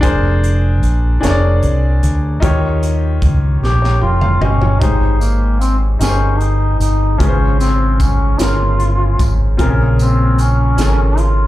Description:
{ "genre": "slow gospel", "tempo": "50 BPM (dotted quarters)", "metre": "6/8", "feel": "straight", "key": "Ab major", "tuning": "A4 = 440 Hz", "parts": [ { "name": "clear grand piano", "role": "accompaniment", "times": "0.0-11.5 s", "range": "Ab2 to Bb5", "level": "-19 LUFS", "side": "left 2 dB", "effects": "plate reverb, slapback echo" }, { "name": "fingered electric bass", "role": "bass", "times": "0.0-11.5 s", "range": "F1 to Eb2", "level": "-14 LUFS", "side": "equal", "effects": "none" }, { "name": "crisp fusion drum kit", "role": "drums", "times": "0.0-11.4 s", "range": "hi-hat, kick drum, snare drum, toms", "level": "-19 LUFS", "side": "equal", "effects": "none" }, { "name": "mellow duduk", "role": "melody", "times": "3.6-11.5 s", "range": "Bb3 to G4", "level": "-19 LUFS", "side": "left 1 dB", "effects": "plate reverb, slapback echo" }, { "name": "tambourine", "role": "percussion", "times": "5.2-11.2 s", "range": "none", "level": "-32 LUFS", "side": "right 3 dB", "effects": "none" } ], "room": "little or no reverb", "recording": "live gig heard through the venue's PA, club reverb", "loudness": "-12 LUFS", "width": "side -15 dB against mid", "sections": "0.0-4.8 A section; 4.8-11.5 B section", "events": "drum fill 3.6-4.8", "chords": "0.0 Bb9/F; 2.4 Eb9; 4.8 Abmaj7; 7.2 Dbmaj7/Ab; 9.6 Bbm7" }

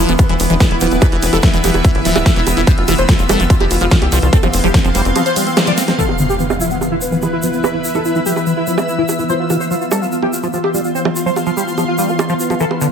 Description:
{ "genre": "psychedelic trance", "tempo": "145 BPM", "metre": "4/4", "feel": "straight", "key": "unclear", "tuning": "A4 = 442 Hz", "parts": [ { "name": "wide unison lead", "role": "melody", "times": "0.0-12.9 s", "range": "B3 to D5", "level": "-20 LUFS", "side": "equal", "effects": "phaser, sidechain pumping, digital delay" }, { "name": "bubbling stepped-filter texture", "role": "sustained chords", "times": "0.0-12.9 s", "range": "E3 to B3", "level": "-21 LUFS", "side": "left 1 dB", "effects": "chorus, built-in reverb, sidechain pumping" }, { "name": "liquid acid bass", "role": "riff", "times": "0.0-12.9 s", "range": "D3 to C4", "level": "-21 LUFS", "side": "moving between left 5 dB and right 4 dB", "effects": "phaser, auto-pan, sidechain pumping, digital delay" }, { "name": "tight sequencer bass", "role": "bass", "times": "0.0-5.1 s", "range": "D1 to C2", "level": "-17 LUFS", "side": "equal", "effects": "none" }, { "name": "granular cloud pad", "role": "texture", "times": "0.0-12.9 s", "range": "E4 to E6", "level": "-23 LUFS", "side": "right 1 dB", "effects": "built-in reverb, sidechain pumping" }, { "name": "big-room dance drum kit", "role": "drums", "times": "0.1-12.8 s", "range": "bongos, hi-hat, ride cymbal, snare drum", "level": "-19 LUFS", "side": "right 3 dB", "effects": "low-pass filter on hats, low-pass filter on perc, low-pass filter on snare, low-pass filter on cymbals" }, { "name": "tube shaker", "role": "percussion", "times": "0.1-12.9 s", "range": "none", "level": "-27 LUFS", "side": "right 1 dB", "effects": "none" }, { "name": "formant-sweep wobble bass", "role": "second line", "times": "0.2-1.6 s", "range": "B3 to D4", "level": "-31 LUFS", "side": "left 5 dB", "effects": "none" }, { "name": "electronic kick drum", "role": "drums", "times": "0.2-4.8 s", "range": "none", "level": "-12 LUFS", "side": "equal", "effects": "none" }, { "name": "impact", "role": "sound effects", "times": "6.0-7.6 s", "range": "none", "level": "-24 LUFS", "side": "equal", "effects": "none" } ], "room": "light reverb, digital ambience", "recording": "none", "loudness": "-12 LUFS", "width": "side -7 dB against mid", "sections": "0.0-6.0 A section; 6.0-12.9 B section", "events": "drop 0.0-6.0; band accent 5.6; drum fill 5.8; impact 6.0-7.6; filter sweep on acid bass 6.0-12.9; filter sweep on synth texture 6.0-12.9", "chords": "0.0 E5; 2.7 F5; 6.0 E5; 9.3 F5" }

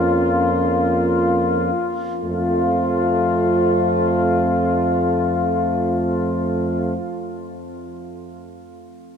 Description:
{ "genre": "classical, hymn-like piece for brass band", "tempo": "free time", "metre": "none", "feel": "none", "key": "F major", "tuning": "A4 = 440 Hz", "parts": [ { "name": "mellow trumpet section", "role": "melody", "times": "0.0-7.0 s", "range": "F4", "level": "-23 LUFS", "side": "left 8 dB", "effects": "none" }, { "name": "warm French horn section", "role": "second line", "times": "0.0-7.0 s", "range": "F4", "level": "-24 LUFS", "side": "right 4 dB", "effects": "none" }, { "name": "warm euphonium", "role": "accompaniment", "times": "0.0-7.0 s", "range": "C4 to Db4", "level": "-26 LUFS", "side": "left 1 dB", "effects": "none" }, { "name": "warm trombone", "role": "accompaniment", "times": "0.0-7.0 s", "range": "A3 to Bb3", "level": "-26 LUFS", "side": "right 3 dB", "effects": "none" }, { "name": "clear tuba", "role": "bass", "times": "0.0-7.0 s", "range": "F2", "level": "-25 LUFS", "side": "right 1 dB", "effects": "none" } ], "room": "wet cathedral reverb, RT60 6.8 s", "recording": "none", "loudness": "-17 LUFS", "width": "side -7 dB against mid", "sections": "0.0-2.2 A section; 2.2-7.8 B section", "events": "slowing down 0.0-2.2", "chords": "0.0 Bbm/F; 2.2 F" }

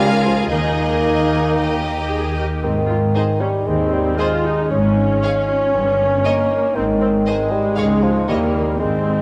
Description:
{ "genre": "cinematic, playful, whimsical film cue", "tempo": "116 BPM", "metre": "4/4", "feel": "straight", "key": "Ab major", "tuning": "A4 = 439 Hz", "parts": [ { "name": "clear studio violin section", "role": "melody", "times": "0.0-8.4 s", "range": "Eb5 to F5", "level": "-30 LUFS", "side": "equal", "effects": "none" }, { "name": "clear studio violin section", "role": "second line", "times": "0.0-8.4 s", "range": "Fb4 to Db5", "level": "-30 LUFS", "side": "equal", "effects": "none" }, { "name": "mellow bassoon", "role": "accompaniment", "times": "0.0-9.2 s", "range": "Eb3 to Db4", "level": "-22 LUFS", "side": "equal", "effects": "none" }, { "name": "rich studio viola section", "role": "accompaniment", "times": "0.0-9.2 s", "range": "Ab3 to Ab4", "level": "-26 LUFS", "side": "equal", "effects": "none" }, { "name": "concert harp", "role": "arpeggios", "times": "0.0-9.2 s", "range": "G2 to Eb5", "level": "-27 LUFS", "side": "equal", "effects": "none" }, { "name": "rich studio cello section", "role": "bass", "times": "0.0-9.2 s", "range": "Db2 to Ab2", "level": "-26 LUFS", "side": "equal", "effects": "none" }, { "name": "rich studio double bass section", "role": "bass", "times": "0.0-9.2 s", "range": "G1 to Eb2", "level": "-26 LUFS", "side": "equal", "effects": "none" } ], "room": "wet concert hall reverb, RT60 2.4 s", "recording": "none", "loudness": "-18 LUFS", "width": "mono", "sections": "0.0-9.2 A section", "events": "none", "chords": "0.0 Db6; 0.5 Ebsus4; 1.6 Eb; 2.6 Ab; 4.7 Db/Ab; 5.7 Eb7/G; 6.8 Ab; 7.8 Db; 8.3 Eb7b9" }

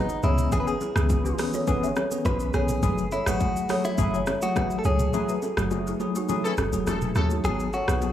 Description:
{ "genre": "afrobeats", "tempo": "104 BPM", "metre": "4/4", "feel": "straight", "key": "unclear", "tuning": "A4 = 440 Hz", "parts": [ { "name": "direct-recorded clean electric guitar", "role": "melody", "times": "0.0-8.1 s", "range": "D#4 to B4", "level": "-31 LUFS", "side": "left 1 dB", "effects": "dub echo" }, { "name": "balafon", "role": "riff", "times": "0.0-8.0 s", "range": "D#4 to E5", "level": "-32 LUFS", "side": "right 2 dB", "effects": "dub echo" }, { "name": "afro-pop drum kit", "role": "drums", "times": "0.1-8.1 s", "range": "hi-hat, kick drum, rim click, shaker, toms", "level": "-29 LUFS", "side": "equal", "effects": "none" }, { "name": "tine electric piano", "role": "accompaniment", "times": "0.2-8.1 s", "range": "E3 to G#4", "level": "-28 LUFS", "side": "left 1 dB", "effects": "fast stereo tremolo, dub echo" }, { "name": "deep log drum bass", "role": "bass", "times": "0.2-8.1 s", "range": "E1 to D#2", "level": "-26 LUFS", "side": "equal", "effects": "none" }, { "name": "congas and bongos", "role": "percussion", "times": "0.5-8.1 s", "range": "none", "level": "-35 LUFS", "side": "left 3 dB", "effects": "dub echo" }, { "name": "warm horn section", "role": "second line", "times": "6.4-7.3 s", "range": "C#4 to A4", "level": "-34 LUFS", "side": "left 2 dB", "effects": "dub echo" } ], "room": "light reverb", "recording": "echo-heavy mix, small room reverb", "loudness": "-22 LUFS", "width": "side -11 dB against mid", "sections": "0.0-7.4 A section", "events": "kick muted 5.1-7.4, 7.4-8.1; band accent 5.1-7.4", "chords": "0.2 C#m7; 2.8 F#m9; 7.4 G#m7" }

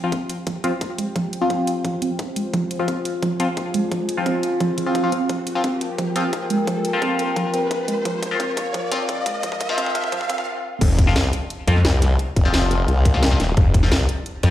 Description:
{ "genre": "dark technical drum and bass", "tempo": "174 BPM", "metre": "4/4", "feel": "straight", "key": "F minor", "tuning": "A4 = 444 Hz", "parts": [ { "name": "dark analog pad", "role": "sustained chords", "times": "0.4-10.5 s", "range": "F4 to Ab5", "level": "-28 LUFS", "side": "left 2 dB", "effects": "chorus, phaser, sidechain pumping" }, { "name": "band-passed chord stab", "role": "stabs", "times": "0.0-14.5 s", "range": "F3 to F4", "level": "-25 LUFS", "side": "left 2 dB", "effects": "phaser, digital delay" }, { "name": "riser and swell", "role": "sound effects", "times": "2.6-10.8 s", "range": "none", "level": "-30 LUFS", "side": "right 1 dB", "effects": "none" }, { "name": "soft round pluck", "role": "arpeggios", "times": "0.1-10.4 s", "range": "F3 to C4", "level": "-26 LUFS", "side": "right 2 dB", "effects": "chorus, sidechain pumping, digital delay" }, { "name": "drum and bass drum kit", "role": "drums", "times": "0.1-14.5 s", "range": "crash cymbal, hi-hat, snare drum", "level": "-27 LUFS", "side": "equal", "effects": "overdrive" }, { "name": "electronic kick drum", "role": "drums", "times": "0.1-13.8 s", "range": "none", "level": "-22 LUFS", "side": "equal", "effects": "overdrive, high-pass filter on kick" }, { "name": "snarling distorted saw bass", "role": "bass", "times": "10.8-14.5 s", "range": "F1 to F2", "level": "-16 LUFS", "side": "equal", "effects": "distortion, overdrive, sidechain pumping" }, { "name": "formant-sweep wobble bass", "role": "bass", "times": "11.2-14.1 s", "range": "Eb1 to C2", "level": "-18 LUFS", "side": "left 1 dB", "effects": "chorus" } ], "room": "moderate digital room reverb, RT60 1.3 s", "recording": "played on a big sound system in a bare room, large studio reverb, high-pass filter", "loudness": "-18 LUFS", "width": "side -12 dB against mid", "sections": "0.0-10.8 A section; 10.8-14.5 B section", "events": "build-up 0.0-10.8; filter sweep on synth pluck 0.0-10.8; filter sweep on synth stab 0.0-10.8; filter sweep 0.0-10.8; riser 2.6-10.5; drum fill 5.3-10.5; swell 10.1-10.8; stop 10.5-10.8; drop 10.8-14.5", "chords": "0.0 F5" }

